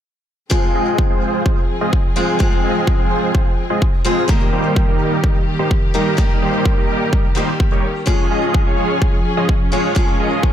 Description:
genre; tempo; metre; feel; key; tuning
EDM, festival progressive house; 127 BPM; 4/4; straight; F minor; A4 = 441 Hz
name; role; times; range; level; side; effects
picked steel-string acoustic guitar; accompaniment; 0.5-10.5 s; Eb3 to Ab4; -22 LUFS; left 3 dB; sidechain pumping, ping-pong delay
warm studio string section; sustained chords; 0.5-10.5 s; Eb3 to Bb4; -25 LUFS; right 1 dB; sidechain pumping
dense compressed supersaw; riff; 0.5-10.5 s; G3 to Eb5; -20 LUFS; right 1 dB; sidechain pumping, low-pass filter, ping-pong delay
electronic kick drum; drums; 0.5-10.5 s; none; -16 LUFS; equal; none
room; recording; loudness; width
small room ambience; none; -14 LUFS; side -10 dB against mid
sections
0.5-10.5 A section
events
none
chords
0.5 Fm; 4.3 Eb; 8.1 Db

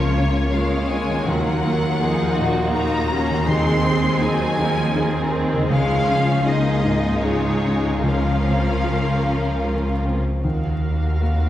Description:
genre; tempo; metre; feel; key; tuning
cinematic, emotional film score for orchestra; 74-82 BPM; 3/4; rubato; Eb dorian; A4 = 440 Hz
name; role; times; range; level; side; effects
rich symphonic violin section; melody; 0.0-11.5 s; Bb4 to C6; -26 LUFS; left 1 dB; none
warm symphonic violin section; second line; 0.0-11.5 s; C4 to Db5; -27 LUFS; left 1 dB; none
felt-muted upright piano; accompaniment; 0.0-11.5 s; Db2 to F5; -23 LUFS; equal; none
rich symphonic viola section; accompaniment; 0.0-11.5 s; Eb3 to F5; -26 LUFS; right 1 dB; none
concert harp; arpeggios; 0.0-11.5 s; Db3 to F5; -28 LUFS; left 3 dB; none
rich symphonic cello section; bass; 0.0-11.5 s; Db2 to Eb2; -24 LUFS; equal; none
rich symphonic double bass section; bass; 10.4-11.5 s; Eb2; -21 LUFS; equal; none
room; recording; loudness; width
wet concert hall reverb, RT60 2.0 s; recorded in a church or concert hall, vinyl crackle; -18 LUFS; side -12 dB against mid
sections
0.0-10.4 A section; 10.4-11.5 B section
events
none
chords
0.0 Bbm/Db; 1.3 Ebmadd9; 3.5 Ab/Eb; 5.7 Dbadd9; 8.0 Bbmadd9/Db; 10.4 Ebmadd9

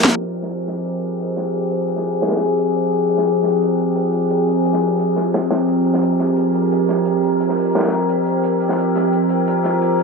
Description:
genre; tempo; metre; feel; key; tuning
dark technical drum and bass; 174 BPM; 4/4; straight; F minor; A4 = 441 Hz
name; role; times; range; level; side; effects
metallic inharmonic drone; sustained chords; 0.0-10.0 s; F3 to Bb4; -16 LUFS; equal; chorus, built-in reverb
crunchy breakbeat drum kit; drums; 0.1-10.0 s; hi-hat, snare drum; -27 LUFS; equal; high-pass filter on hats, low-pass filter on hats, high-pass filter on snare, low-pass filter on snare, high-pass filter on room, low-pass filter on room
room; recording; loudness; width
wet digital room reverb, RT60 1.1 s, small room ambience; low-pass filter; -16 LUFS; side -4 dB against mid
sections
0.2-10.0 A section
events
filter sweep 0.2-10.0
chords
0.2 Fmadd9

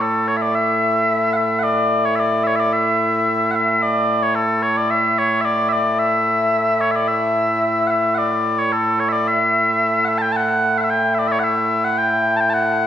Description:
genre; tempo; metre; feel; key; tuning
scottish traditional, Scottish pipe music; 110 BPM; 4/4; straight; A mixolydian; A4 = 445 Hz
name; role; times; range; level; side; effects
mellow small bagpipes; solo; 0.0-12.9 s; A2 to A5; -16 LUFS; equal; none
room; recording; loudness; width
wet recital hall reverb, RT60 1.6 s; heard from further back in the room; -16 LUFS; side -10 dB against mid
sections
0.0-12.9 A section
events
none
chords
none

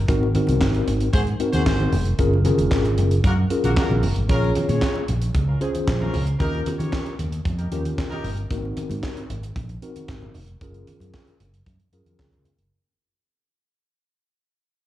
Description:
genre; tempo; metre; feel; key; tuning
early-eighties boogie funk; 114 BPM; 4/4; straight; unclear; A4 = 442 Hz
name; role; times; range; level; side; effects
fretless electric bass; bass; 0.0-12.7 s; F1 to Eb3; -23 LUFS; equal; none
mellow tine electric piano; accompaniment; 0.1-12.5 s; Bb3 to Db5; -25 LUFS; left 2 dB; medium stereo tremolo, slapback echo
tight funk drum kit; drums; 0.1-12.7 s; handclaps, hi-hat, kick drum, snare drum; -26 LUFS; equal; none
congas; percussion; 0.1-12.6 s; none; -30 LUFS; right 1 dB; none
warm horn section; second line; 1.1-8.3 s; Bb3 to Db5; -31 LUFS; equal; slapback echo
room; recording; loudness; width
light reverb, studio reverb; live gig heard through the venue's PA, club reverb; -19 LUFS; side -14 dB against mid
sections
0.0-4.3 A section; 4.3-12.7 B section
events
fade-out 4.3-12.7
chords
0.1 Ab7; 2.2 Gbmaj7; 4.3 Bbm9; 6.4 Eb7; 8.5 Ab7; 10.6 Gbmaj7

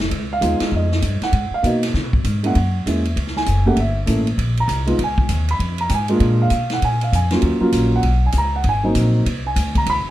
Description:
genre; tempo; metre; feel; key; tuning
jazz, small-group swing and bop; 197 BPM; 4/4; swing 62% on 8ths; Db mixolydian; A4 = 440 Hz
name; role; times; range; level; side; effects
upright bass; bass; 0.0-10.1 s; F1 to Db3; -19 LUFS; equal; none
swinging big-band drum kit; drums; 0.0-10.0 s; hi-hat, kick drum, ride cymbal, snare drum; -24 LUFS; equal; none
dark upright piano; accompaniment; 0.3-10.1 s; Gb3 to Cb6; -20 LUFS; right 1 dB; none
room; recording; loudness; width
little or no reverb; dark, warm production; -16 LUFS; side -14 dB against mid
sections
0.0-10.1 A section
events
none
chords
0.0 Db7; 1.3 Abm7; 1.9 Db5; 2.5 Gb7; 3.8 Gdim7; 5.0 Db7; 6.2 Bb7; 7.4 Ebm7; 8.6 Ab7

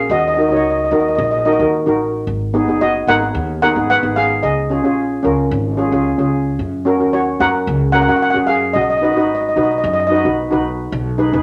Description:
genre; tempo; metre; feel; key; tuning
calypso; 111 BPM; 4/4; straight; F# major; A4 = 440 Hz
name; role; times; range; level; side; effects
steel pan; accompaniment; 0.0-11.4 s; B3 to C#5; -20 LUFS; equal; none
upright bass; bass; 0.0-11.4 s; E#1 to F#2; -25 LUFS; equal; none
steel pan; melody; 0.1-10.2 s; F#4 to F#5; -18 LUFS; equal; none
room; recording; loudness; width
wet studio reverb, RT60 0.7 s; none; -16 LUFS; mono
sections
0.0-11.4 A section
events
none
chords
0.1 D#m; 2.3 G#m7; 4.4 C#; 6.6 F#; 8.8 B; 10.9 G#m

